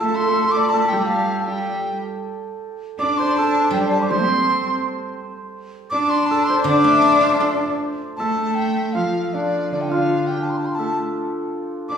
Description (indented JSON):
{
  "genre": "chinese traditional, Chinese chamber ensemble",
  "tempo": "81 BPM",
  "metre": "2/4",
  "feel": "rubato",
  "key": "D yu mode",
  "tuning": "A4 = 440 Hz",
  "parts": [
    { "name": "mellow hollow large dizi", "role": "melody", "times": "0.0-12.0 s", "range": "D5 to D6", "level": "-21 LUFS", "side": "left 1 dB", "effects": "none" },
    { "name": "bright cello", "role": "second line", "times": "0.0-12.0 s", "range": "D3 to D4", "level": "-23 LUFS", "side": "right 2 dB", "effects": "none" },
    { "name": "hammered dulcimer", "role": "second line", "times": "0.0-12.0 s", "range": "D4 to D5", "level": "-24 LUFS", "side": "right 2 dB", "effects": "none" },
    { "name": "guzheng", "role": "accompaniment", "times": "3.7-8.9 s", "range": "D3 to A4", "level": "-24 LUFS", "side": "left 5 dB", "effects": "none" }
  ],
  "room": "wet recital hall reverb, RT60 1.7 s",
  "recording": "heard from further back in the room, studio ambience",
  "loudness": "-17 LUFS",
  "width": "side -7 dB against mid",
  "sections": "0.0-8.2 A section; 8.2-12.0 B section",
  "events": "none",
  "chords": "none"
}